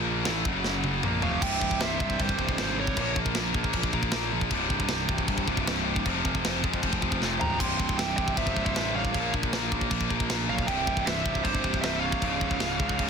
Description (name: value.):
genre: heavy metal.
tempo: 156 BPM.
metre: 4/4.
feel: straight.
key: C phrygian dominant.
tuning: A4 = 440 Hz.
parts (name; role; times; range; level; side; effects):
clear studio string section; sustained chords; 0.0-13.1 s; Bb2 to F#5; -41 LUFS; left 1 dB; none.
heavy high-gain guitar; riff; 0.0-13.1 s; C2 to Bb3; -31 LUFS; left 16 dB; distortion.
scooped high-gain guitar; riff; 0.0-13.1 s; C2 to Bb3; -32 LUFS; right 14 dB; distortion.
fuzz picked electric bass; bass; 0.0-13.1 s; C1 to F2; -33 LUFS; equal; overdrive.
tight metal drum kit; drums; 0.3-13.1 s; china cymbal, crash cymbal, kick drum, snare drum, toms; -30 LUFS; left 1 dB; soft clipping on snare.
high-gain lead guitar; melody; 1.2-3.1, 7.4-13.1 s; C5 to C6; -32 LUFS; right 4 dB; distortion, ping-pong delay.
nasal lead guitar with a parked wah; second line; 1.2-3.1, 7.4-13.1 s; G4 to G5; -39 LUFS; right 3 dB; overdrive, ping-pong delay.
room: light reverb.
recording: dense, heavily limited modern master.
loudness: -24 LUFS.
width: side -6 dB against mid.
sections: 0.0-1.4 A section; 1.4-13.1 B section.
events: drum fill 0.7-1.4, 7.2-7.6.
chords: 0.3 F5; 0.5 F#5; 1.0 F5; 1.4 C; 3.0 Bbm; 4.5 C; 6.1 Fm; 7.6 C; 9.1 Bbm; 10.7 C; 12.2 Db.